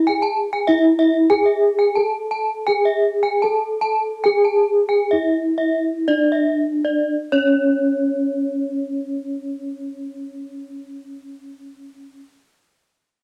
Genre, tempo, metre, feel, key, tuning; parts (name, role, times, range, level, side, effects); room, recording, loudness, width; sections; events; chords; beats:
gamelan; 54-99 BPM; 4/4; straight; C# pelog; A4 = 440 Hz
gamelan-type bronze metallophone; melody; 0.0-12.2 s; C#4 to A4-20c; -21 LUFS; equal; cassette tape
gamelan-type bronze metallophone; arpeggios; 0.1-12.2 s; C#5 to A5-20c; -25 LUFS; equal; cassette tape
light reverb, small room ambience; home recording on cassette; -19 LUFS; mono
0.0-7.1 A section; 7.1-11.5 B section
slowing down 0.7-7.1
0.08 | 0.69 1.31 1.97 2.68 | 3.43 4.24 5.12 6.08 | 7.13 8.23 9.33 10.43